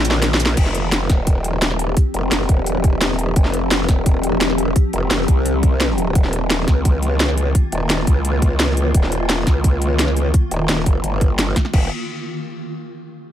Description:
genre	dark technical drum and bass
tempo	172 BPM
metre	4/4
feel	straight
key	unclear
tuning	A4 = 441 Hz
part	swarming drone	sustained chords	0.0-11.9 s	Eb3 to G4	-24 LUFS	left 1 dB	built-in reverb, sidechain pumping
part	growl bass	bass	0.0-11.9 s	Eb1 to Db2	-20 LUFS	equal	chorus
part	drum and bass drum kit	drums	0.0-11.8 s	crash cymbal, hi-hat, ride cymbal, shaker, snare drum	-21 LUFS	equal	none
part	electronic kick drum	drums	0.6-11.8 s	none	-15 LUFS	equal	none
room	digital ambience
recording	none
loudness	-15 LUFS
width	side -11 dB against mid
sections	0.6-11.7 A section; 11.7-13.1 B section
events	break 0.0-0.6; drum fill 0.0-0.6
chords	0.0 Eb5; 0.6 Fsus2; 6.2 Eb5; 11.7 Fsus2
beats	0.22 | 0.57 0.92 1.27 1.62 | 1.97 2.32 2.67 3.01 | 3.36 3.71 4.06 4.41 | 4.76 5.11 5.46 5.80 | 6.15 6.50 6.85 7.20 | 7.55 7.90 8.25 8.60 | 8.94 9.29 9.64 9.99 | 10.34 10.69 11.04 11.39 | 11.73

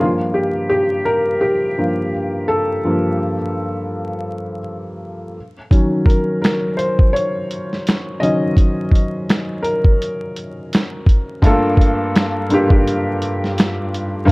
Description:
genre	lo-fi hip hop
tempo	84 BPM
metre	4/4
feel	swing 57% on 16ths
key	G minor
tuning	A4 = 440 Hz
part	felt-muted upright piano	accompaniment	0.0-14.3 s	G2 to Eb5	-18 LUFS	equal	cassette tape, low-pass filter
part	lo-fi sampler-style drum kit	drums	5.7-14.3 s	finger snaps, hi-hat, kick drum, snare drum	-14 LUFS	equal	none
room	light reverb, digital ambience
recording	dark, warm production, vinyl crackle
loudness	-15 LUFS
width	side -25 dB against mid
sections	0.0-11.4 A section; 11.4-14.3 B section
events	felt piano solo 0.0-11.4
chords	0.0 Gm9; 5.4 Ebm7; 11.4 Gm9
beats	| 0.00 0.71 1.43 2.14 | 2.85 3.57 4.28 5.00 | 5.71 6.42 7.14 7.85 | 8.57 9.28 10.00 10.71 | 11.43 12.14 12.85 13.57 | 14.28

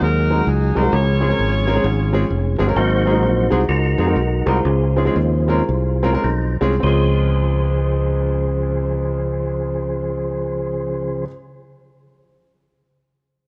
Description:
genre	gospel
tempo	99-131 BPM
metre	4/4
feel	swing 64% on 8ths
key	Db major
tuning	A4 = 436 Hz
part	clear saxophone section	melody	0.0-2.6 s	Eb4 to Db5	-27 LUFS	equal	none
part	warm concert grand piano	accompaniment	0.0-11.3 s	Db2 to Bb4	-25 LUFS	equal	none
part	percussive tonewheel organ	sustained chords	0.0-11.2 s	Db3 to C5	-24 LUFS	equal	fast rotary speaker, overdrive, chorus vibrato
part	fingered electric bass	bass	0.0-11.2 s	F1 to F2	-22 LUFS	equal	none
room	light reverb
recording	worn, warbling old tape, cassette tape, warbly pitch drift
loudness	-19 LUFS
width	mono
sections	0.0-2.8 A section; 2.8-6.8 B section; 6.8-11.7 C section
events	slowing down 2.8-6.8; tonewheel organ solo 2.8-6.8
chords	0.0 Ab7; 0.9 Dbmaj7; 2.8 Ab7; 4.6 Dbmaj7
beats	0.01 0.47 | 0.93 1.39 1.84 2.30 | 2.75 3.21 3.68 4.16 | 4.64 5.15 5.68 6.24 | 6.83 7.43 8.04 8.65 | 9.26 9.86 10.47 11.07

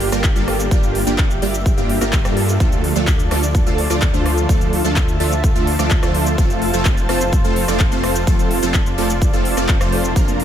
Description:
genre	EDM, festival progressive house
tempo	127 BPM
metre	4/4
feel	straight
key	F major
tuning	A4 = 440 Hz
part	lush unison pad	sustained chords	0.0-10.4 s	F4 to Bb5	-25 LUFS	left 1 dB	chorus, sidechain pumping
part	supersaw stab	riff	0.0-10.4 s	F3 to D5	-20 LUFS	right 1 dB	analog chorus, sidechain pumping, tape echo
part	detuned saw bass	bass	0.0-10.4 s	F1 to G2	-22 LUFS	equal	sidechain pumping
part	big-room dance drum kit	drums	0.0-10.4 s	handclaps, hi-hat, rim click, shaker	-25 LUFS	left 1 dB	none
part	electronic kick drum	drums	0.2-10.3 s	none	-17 LUFS	equal	none
room	light reverb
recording	none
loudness	-14 LUFS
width	side -10 dB against mid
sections	0.0-10.4 A section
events	none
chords	0.0 Gm7; 2.6 Dm; 6.4 F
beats	0.24 | 0.71 1.19 1.66 2.13 | 2.60 3.07 3.55 4.02 | 4.49 4.96 5.44 5.91 | 6.38 6.85 7.33 7.80 | 8.27 8.74 9.22 9.69 | 10.16

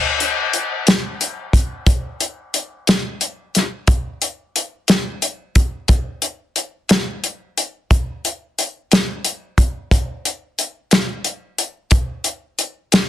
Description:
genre	blues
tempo	60 BPM (dotted quarters)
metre	12/8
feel	straight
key	none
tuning	none
part	warm soul drum kit	drums	0.2-13.1 s	hi-hat, kick drum, snare drum	-15 LUFS	left 1 dB	none
room	light reverb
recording	dense, heavily limited modern master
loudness	-17 LUFS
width	side -12 dB against mid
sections	0.0-13.1 A section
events	none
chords	none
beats	0.86 1.87 2.88 | 3.88 4.89 5.89 6.90 | 7.90 8.91 9.91 10.91 | 11.91 12.92

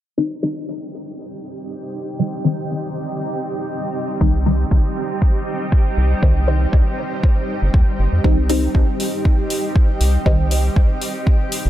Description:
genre	dub techno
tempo	119 BPM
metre	4/4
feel	swing 54% on 16ths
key	C minor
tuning	A4 = 439 Hz
part	granular cloud pad	sustained chords	1.1-11.7 s	G3 to G4	-25 LUFS	right 1 dB	built-in reverb, lush chorus, sidechain pumping
part	filtered dub chord stab	stabs	0.2-10.4 s	Eb3 to Eb4	-24 LUFS	left 1 dB	phaser, dub echo
part	round analog bass	bass	4.2-11.7 s	G1 to F2	-17 LUFS	equal	sidechain pumping
part	electronic kick drum	drums	4.2-11.4 s	none	-15 LUFS	equal	none
part	electronic hi-hat	drums	8.5-11.6 s	none	-27 LUFS	left 2 dB	none
room	light reverb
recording	low-pass filter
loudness	-16 LUFS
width	side -13 dB against mid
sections	0.2-8.2 A section; 8.2-11.7 B section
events	filter sweep on synth stab 0.2-8.2; filter sweep 0.2-8.2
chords	0.2 Cm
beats	| 0.18 0.68 1.18 1.69 | 2.19 2.70 3.20 3.71 | 4.21 4.71 5.22 5.72 | 6.23 6.73 7.24 7.74 | 8.24 8.75 9.25 9.76 | 10.26 10.76 11.27

